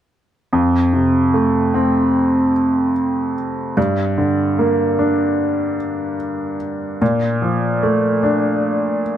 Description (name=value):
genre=pop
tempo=74 BPM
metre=4/4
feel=straight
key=F major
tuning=A4 = 440 Hz
part: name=clear baby grand piano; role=accompaniment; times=0.5-9.2 s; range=F2 to D4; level=-15 LUFS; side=equal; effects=none
room=moderate plate reverb, RT60 2.8 s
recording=none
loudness=-15 LUFS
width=side -10 dB against mid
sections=0.5-9.2 A section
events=none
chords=0.5 F; 3.8 Gm; 7.0 Bbmaj7